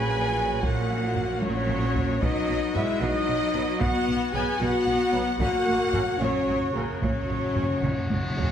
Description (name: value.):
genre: cinematic, epic orchestral film score.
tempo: 75 BPM (dotted quarters).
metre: 6/8.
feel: straight.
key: unclear.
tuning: A4 = 436 Hz.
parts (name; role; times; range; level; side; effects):
rich symphonic violin section; melody; 0.0-8.4 s; A#4 to G#5; -35 LUFS; left 3 dB; none.
warm symphonic violin section; second line; 0.0-8.4 s; A#4 to G#5; -34 LUFS; left 2 dB; none.
rich studio viola section; accompaniment; 0.0-8.4 s; C#3 to B4; -31 LUFS; left 2 dB; none.
chamber organ, soft reed; sustained chords; 0.0-8.5 s; F#4 to F#5; -37 LUFS; equal; none.
clear trombone section; sustained chords; 0.0-8.5 s; F#3 to C#4; -37 LUFS; right 5 dB; none.
dark French horn section; sustained chords; 0.0-8.4 s; A#3 to G#4; -29 LUFS; left 3 dB; none.
dark trumpet section; stabs; 0.0-8.4 s; A#4 to G#5; -32 LUFS; right 3 dB; none.
rich studio double bass section; bass; 0.0-8.5 s; A#1 to B1; -33 LUFS; right 2 dB; none.
rich symphonic cello section; bass; 0.0-8.5 s; A#2 to B2; -32 LUFS; right 3 dB; none.
taiko ensemble; drums; 0.6-8.5 s; none; -31 LUFS; equal; none.
timpani; percussion; 5.4-8.5 s; F#2; -32 LUFS; equal; none.
room: moderate scoring stage reverb, RT60 1.6 s.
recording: none.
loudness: -23 LUFS.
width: side -9 dB against mid.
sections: 0.0-8.5 A section.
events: drum fill 1.4-2.2, 7.8-8.5; timpani fill 5.4-8.5.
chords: 0.0 F#/A#; 2.2 B; 5.4 F#/A#.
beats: | 0.64 1.43 | 2.23 3.02 | 3.81 4.61 | 5.40 6.21 | 7.02 7.84.